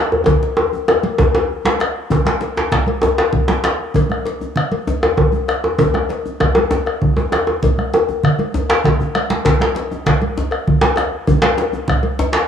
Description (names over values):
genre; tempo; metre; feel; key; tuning
west african traditional, West African drum ensemble; 131 BPM (dotted quarters); 12/8; straight; none; none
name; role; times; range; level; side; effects
bombo; percussion; 0.1-12.5 s; none; -20 LUFS; equal; none
djembe; percussion; 0.1-12.5 s; none; -17 LUFS; right 1 dB; none
congas; percussion; 0.3-12.2 s; none; -19 LUFS; right 2 dB; none
cowbell; percussion; 0.3-12.5 s; none; -24 LUFS; left 8 dB; none
djembe; percussion; 0.3-12.3 s; none; -24 LUFS; left 2 dB; none
room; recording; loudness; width
wet spring reverb, RT60 2.2 s; home recording on cassette, studio ambience; -14 LUFS; side -8 dB against mid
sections
0.0-2.1 A section; 2.1-12.5 A section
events
drum fill 0.3-2.1, 8.8-9.4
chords
none